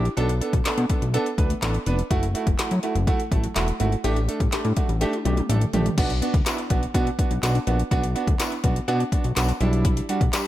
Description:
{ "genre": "dance-pop", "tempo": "124 BPM", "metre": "4/4", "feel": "straight", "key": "B minor", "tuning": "A4 = 440 Hz", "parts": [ { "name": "clear grand piano", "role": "accompaniment", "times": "0.0-10.4 s", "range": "G3 to B4", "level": "-27 LUFS", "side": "right 3 dB", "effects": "sidechain pumping" }, { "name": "wide unison pluck", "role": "arpeggios", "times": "0.0-10.4 s", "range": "F#3 to A4", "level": "-34 LUFS", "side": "left 3 dB", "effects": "phaser, sidechain pumping, digital delay" }, { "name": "fat analog bass", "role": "bass", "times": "0.0-10.3 s", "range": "E1 to B2", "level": "-23 LUFS", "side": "left 1 dB", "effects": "sidechain pumping" }, { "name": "deep house drum kit", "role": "drums", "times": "0.1-10.4 s", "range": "crash cymbal, handclaps, hi-hat, kick drum, snare drum, toms", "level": "-24 LUFS", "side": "left 1 dB", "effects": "none" }, { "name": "tambourine", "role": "percussion", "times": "6.5-10.4 s", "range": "none", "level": "-36 LUFS", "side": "left 8 dB", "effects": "none" } ], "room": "little or no reverb", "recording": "none", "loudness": "-20 LUFS", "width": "side -14 dB against mid", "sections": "0.0-6.0 A section; 6.0-10.5 B section", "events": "drum fill 5.0-6.0", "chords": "0.2 Bm7; 2.1 F#m7; 4.0 A7sus4; 6.0 Bm; 9.6 Em7/B" }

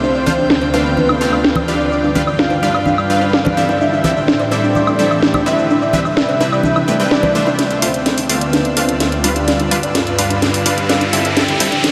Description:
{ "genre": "progressive house", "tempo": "127 BPM", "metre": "4/4", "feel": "straight", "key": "D dorian", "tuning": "A4 = 440 Hz", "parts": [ { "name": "unison lead", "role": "melody", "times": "0.0-11.9 s", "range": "B4 to G5", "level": "-22 LUFS", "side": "equal", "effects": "delay" }, { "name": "lush unison pad", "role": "sustained chords", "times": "0.0-11.9 s", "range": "D2 to C5", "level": "-24 LUFS", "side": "equal", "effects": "chorus" }, { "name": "soft round pluck", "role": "arpeggios", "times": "0.0-11.9 s", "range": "A3 to D5", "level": "-24 LUFS", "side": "equal", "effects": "none" }, { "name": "supersaw stab", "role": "stabs", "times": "0.0-11.7 s", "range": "G3 to G5", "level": "-22 LUFS", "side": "equal", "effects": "low-pass filter, delay" }, { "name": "house drum kit", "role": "drums", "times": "0.0-11.9 s", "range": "cabasa, hi-hat, snare drum, woodblock", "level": "-21 LUFS", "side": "equal", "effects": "overdrive, low-pass filter on perc, low-pass filter on snare, low-pass filter on hats, low-pass filter on room" }, { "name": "drifting glass-harmonics texture", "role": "texture", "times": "0.0-11.9 s", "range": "D5 to G6", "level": "-30 LUFS", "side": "equal", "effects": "chorus, built-in reverb" }, { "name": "congas, cowbell and bongos", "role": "percussion", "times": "0.3-7.6 s", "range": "none", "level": "-26 LUFS", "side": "equal", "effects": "none" }, { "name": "swell and riser", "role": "sound effects", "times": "6.9-11.9 s", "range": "none", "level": "-25 LUFS", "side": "equal", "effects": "none" } ], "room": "wet huge ambient reverb, RT60 7.6 s", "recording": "dreamy mix soaked in reverb", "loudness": "-15 LUFS", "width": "mono", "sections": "0.0-7.6 A section; 7.6-11.9 B section", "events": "filter sweep on synth pluck 0.0-7.6; filter sweep on analog synth pad 0.0-7.6, 7.6-11.9; build-up 7.6-11.9; drum fill 7.6-11.9; riser 7.6-11.9", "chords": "0.0 Dm7; 1.9 G7; 3.8 Am7; 5.7 Cmaj7; 7.6 Dm7; 9.5 G7; 11.4 Am7" }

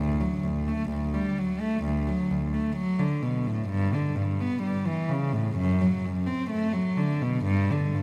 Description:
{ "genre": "classical, baroque-style suite movement for unaccompanied cello", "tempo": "64 BPM", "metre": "4/4", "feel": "rubato", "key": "D major", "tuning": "A4 = 440 Hz", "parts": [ { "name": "warm cello", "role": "solo", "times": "0.0-8.0 s", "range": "D2 to C4", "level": "-27 LUFS", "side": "equal", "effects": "none" } ], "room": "wet church reverb, RT60 3.6 s", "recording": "none", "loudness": "-27 LUFS", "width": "mono", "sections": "0.0-8.0 A section", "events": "none", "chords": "none" }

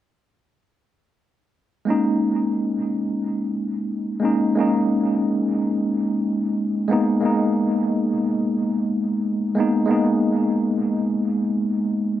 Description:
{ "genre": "hip hop", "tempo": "90 BPM", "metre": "4/4", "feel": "swing 61% on 16ths", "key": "unclear", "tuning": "A4 = 440 Hz", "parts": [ { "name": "mellow tine electric piano", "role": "solo", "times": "1.9-12.2 s", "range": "G#3 to D#4", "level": "-19 LUFS", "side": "equal", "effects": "medium stereo tremolo, cassette tape, high-pass filter, low-pass filter, dub echo" } ], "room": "wet spring reverb, RT60 1.3 s", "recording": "echo-heavy mix", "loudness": "-19 LUFS", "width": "side -12 dB against mid", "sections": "1.9-12.2 A section", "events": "none", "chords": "1.9 D#7sus4; 6.9 G#madd9" }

